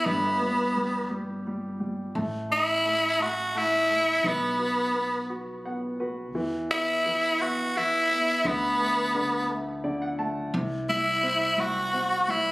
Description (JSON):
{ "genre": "six-eight pop ballad", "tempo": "57 BPM (dotted quarters)", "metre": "6/8", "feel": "straight", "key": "E minor", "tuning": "A4 = 438 Hz", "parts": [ { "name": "raspy tenor saxophone", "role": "melody", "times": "0.0-12.5 s", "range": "B3 to F#4", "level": "-24 LUFS", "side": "equal", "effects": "none" }, { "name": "clear concert grand piano", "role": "accompaniment", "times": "0.0-12.5 s", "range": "C3 to A5", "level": "-32 LUFS", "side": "equal", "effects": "none" }, { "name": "upright bass", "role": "bass", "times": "0.0-12.5 s", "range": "G1 to E2", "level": "-36 LUFS", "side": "equal", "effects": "none" } ], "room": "moderate scoring stage reverb, RT60 1.9 s, small room reverb", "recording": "recorded on a phone in the room, studio reverb, compression", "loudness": "-24 LUFS", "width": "side -21 dB against mid", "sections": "0.0-12.5 A section", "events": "grand piano fill 5.3-6.3, 9.5-10.5", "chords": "0.1 G; 2.2 A5; 4.2 B5; 6.3 E5; 8.4 D5; 10.5 C", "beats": "| 0.06 1.11 | 2.15 3.20 | 4.24 5.29 | 6.35 7.40 | 8.45 9.49 | 10.53 11.57" }